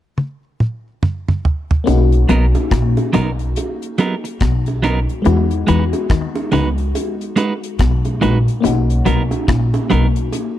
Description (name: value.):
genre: lovers rock reggae.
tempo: 71 BPM.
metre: 4/4.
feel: swing 61% on 16ths.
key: B major.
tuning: A4 = 440 Hz.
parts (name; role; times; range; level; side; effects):
damped 70s drum kit; drums; 0.2-10.6 s; hi-hat, kick drum, rim click, toms; -18 LUFS; right 1 dB; none.
FM electric piano with soft pad layer; accompaniment; 1.8-10.6 s; G#3 to F#4; -22 LUFS; left 4 dB; chorus, phaser.
semi-hollow electric guitar; riff; 1.9-10.2 s; A#2 to E3; -22 LUFS; left 7 dB; spring reverb, slapback echo.
upright bass; bass; 1.9-10.3 s; A#1 to E2; -16 LUFS; equal; none.
bongos; percussion; 1.9-10.6 s; none; -26 LUFS; right 6 dB; none.
clean electric guitar; stabs; 2.3-10.1 s; F#3 to B4; -17 LUFS; right 4 dB; vibrato effect.
room: small room ambience.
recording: dry, close 1970s-style studio recording.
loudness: -14 LUFS.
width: side -12 dB against mid.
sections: 0.0-1.9 A section; 1.9-10.6 B section.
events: drum fill 0.2-1.9.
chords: 0.0 N.C.; 1.9 Bmaj7; 5.2 Emaj9; 8.6 Bmaj7.